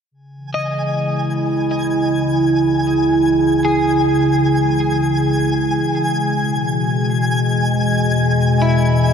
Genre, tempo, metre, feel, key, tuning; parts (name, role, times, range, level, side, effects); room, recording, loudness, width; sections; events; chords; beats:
ambient; 78 BPM; 4/4; straight; C# minor; A4 = 439 Hz
warbly tape-like pad; sustained chords; 0.1-9.1 s; B2 to D#5; -16 LUFS; equal; chorus, built-in reverb
deep rumbling drone; bass; 1.5-9.1 s; C#2 to E2; -34 LUFS; left 1 dB; built-in reverb
twinkling granular texture; texture; 0.5-9.1 s; G#5; -23 LUFS; left 1 dB; built-in reverb
clean electric guitar; arpeggios; 0.5-9.1 s; E4 to D#5; -26 LUFS; left 2 dB; analog chorus, tape echo
wet huge ambient reverb, RT60 7.8 s; dark, warm production; -15 LUFS; side -7 dB against mid
0.1-9.1 A section
fade-in on synth drone 0.1-9.1
0.1 C#m; 6.3 Emaj7
| 0.14 0.92 1.70 2.47 | 3.25 4.02 4.79 5.55 | 6.32 7.08 7.85 8.62